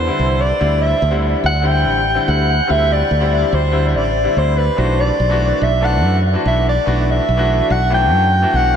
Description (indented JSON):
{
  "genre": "progressive instrumental, band music in an uneven meter",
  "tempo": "144 BPM",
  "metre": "5/4",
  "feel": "straight",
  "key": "A dorian",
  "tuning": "A4 = 439 Hz",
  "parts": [
    { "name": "dark soprano saxophone", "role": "melody", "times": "0.0-8.8 s", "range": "B4 to G5", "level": "-17 LUFS", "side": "equal", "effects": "ping-pong delay" },
    { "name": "fingered electric bass", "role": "bass", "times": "0.0-8.8 s", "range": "A1 to F#2", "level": "-17 LUFS", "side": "equal", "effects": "none" },
    { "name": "bright grand piano", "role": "accompaniment", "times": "0.1-8.8 s", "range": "D3 to A4", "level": "-21 LUFS", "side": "left 2 dB", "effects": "none" }
  ],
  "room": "moderate huge ambient reverb, RT60 7.5 s",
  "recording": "dreamy mix soaked in reverb",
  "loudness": "-13 LUFS",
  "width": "side -8 dB against mid",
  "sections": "0.0-8.8 A section",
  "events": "none",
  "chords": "0.0 Am; 4.8 Bm"
}